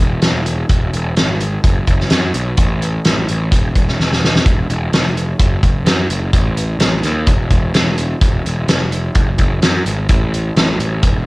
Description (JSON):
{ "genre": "quiet-loud alternative rock", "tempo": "128 BPM", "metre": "4/4", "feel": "straight", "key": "unclear", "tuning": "A4 = 436 Hz", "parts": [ { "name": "fuzz picked electric bass", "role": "bass", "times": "0.0-11.2 s", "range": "E1 to F#2", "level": "-18 LUFS", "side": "equal", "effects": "overdrive" }, { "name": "loose indie drum kit", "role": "drums", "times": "0.2-11.1 s", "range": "hi-hat, kick drum, snare drum", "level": "-14 LUFS", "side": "equal", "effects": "cassette tape" } ], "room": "little or no reverb", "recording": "home recording on cassette", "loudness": "-13 LUFS", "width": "side -22 dB against mid", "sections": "0.0-11.3 A section", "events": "drum fill 4.0-4.5", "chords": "none" }